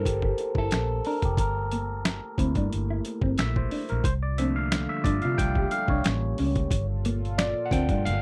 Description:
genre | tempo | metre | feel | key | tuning
R&B, neo-soul | 90 BPM | 4/4 | swing 55% on 16ths | G dorian | A4 = 441 Hz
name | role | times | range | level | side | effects
mellow electric guitar | second line | 0.0-8.0 s | Bb3 to G4 | -34 LUFS | equal | none
overdriven tine electric piano | accompaniment | 0.0-8.2 s | F3 to G5 | -32 LUFS | equal | phaser
vintage muted fingered electric bass | bass | 0.0-8.2 s | F1 to C3 | -30 LUFS | equal | none
boom bap sampler-style drum kit | drums | 0.1-8.2 s | finger snaps, hi-hat, kick drum, snare drum | -30 LUFS | equal | overdrive
warm analog pad | sustained chords | 4.0-8.2 s | Bb2 to A4 | -39 LUFS | equal | chorus
room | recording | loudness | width
little or no reverb | dry, close 1970s-style studio recording | -27 LUFS | mono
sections
0.0-8.2 A section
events
tine electric piano solo 0.0-8.2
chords
0.0 Gm69; 4.0 C13sus4; 6.0 A7b9; 6.7 Gm9

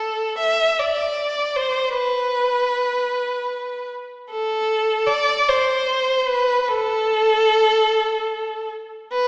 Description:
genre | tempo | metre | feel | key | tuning
classical, free, expressive piece for unaccompanied violin | 51 BPM (dotted quarters) | 6/8 | rubato | A minor | A4 = 439 Hz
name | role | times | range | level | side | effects
rich violin | solo | 0.0-9.3 s | A4 to E5 | -18 LUFS | equal | none
room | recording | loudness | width
wet scoring stage reverb, RT60 1.7 s | recorded in a church or concert hall, small speaker sound | -17 LUFS | side -35 dB against mid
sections
0.0-9.3 A section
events
none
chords
none

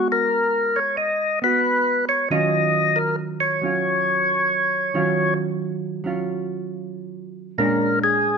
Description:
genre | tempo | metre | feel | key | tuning
jazz | 91 BPM | 4/4 | swing 68% on 8ths | Eb minor | A4 = 438 Hz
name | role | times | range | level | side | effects
percussive tonewheel organ | melody | 0.0-8.4 s | Ab4 to Eb5 | -19 LUFS | left 2 dB | slow rotary speaker
hollow-body jazz guitar | accompaniment | 0.0-8.4 s | Bb2 to Gb4 | -25 LUFS | right 4 dB | none
room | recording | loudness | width
moderate large studio reverb, RT60 1.2 s | none | -19 LUFS | side -5 dB against mid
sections
0.0-8.4 A section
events
none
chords
0.0 Abm9; 2.3 Ebm9; 7.6 Bb7#9

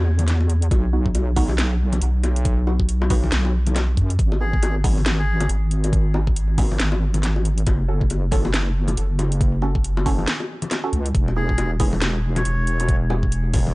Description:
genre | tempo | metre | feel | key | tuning
deep dubstep | 138 BPM | 4/4 | swing 58% on 16ths, half-time | G# phrygian | A4 = 440 Hz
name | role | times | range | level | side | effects
deep soft wobble bass | bass | 0.0-13.7 s | E1 to F#2 | -20 LUFS | equal | chorus
garage drum kit | drums | 0.2-13.6 s | hi-hat, snare drum | -27 LUFS | equal | none
congas and bongos | percussion | 0.2-13.7 s | none | -29 LUFS | left 3 dB | dub echo
electronic kick drum | drums | 0.7-13.6 s | none | -20 LUFS | equal | none
filtered dub chord stab | stabs | 0.9-13.2 s | B3 to A4 | -31 LUFS | right 3 dB | phaser, dub echo
melodica | melody | 4.4-5.5, 11.4-13.0 s | G#4 to C#5 | -31 LUFS | equal | dub echo
room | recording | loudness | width
digital ambience | dry, gritty hardware recording, nothing above 10.3 kHz | -18 LUFS | side -22 dB against mid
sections
0.0-13.7 A section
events
none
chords
0.0 N.C.; 0.7 B; 4.2 G#m; 7.7 F#m; 11.1 E

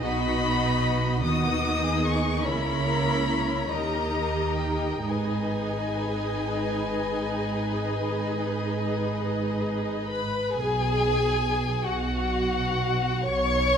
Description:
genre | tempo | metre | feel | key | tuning
classical, slow romantic movement for string orchestra | 42-52 BPM (dotted quarters) | 12/8 | rubato | G# minor | A4 = 442 Hz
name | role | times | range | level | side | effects
rich chamber violin section | melody | 0.0-13.8 s | F#5 to D#6 | -31 LUFS | left 5 dB | none
warm symphonic violin section | second line | 0.0-13.8 s | F#4 to D#5 | -30 LUFS | left 3 dB | none
warm studio viola section | accompaniment | 0.0-13.8 s | A#3 to C#5 | -30 LUFS | right 1 dB | none
dark chamber double bass section | bass | 0.0-13.8 s | G#1 to D#2 | -31 LUFS | right 3 dB | none
warm studio cello section | bass | 0.0-13.8 s | G#2 to D#3 | -31 LUFS | right 2 dB | none
room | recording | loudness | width
wet recital hall reverb, RT60 1.5 s | none | -24 LUFS | side -7 dB against mid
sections
0.0-10.5 A section; 10.5-13.8 B section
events
none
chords
0.0 B; 2.5 A#dim/C#; 3.7 D#; 5.1 G#m; 10.5 B5

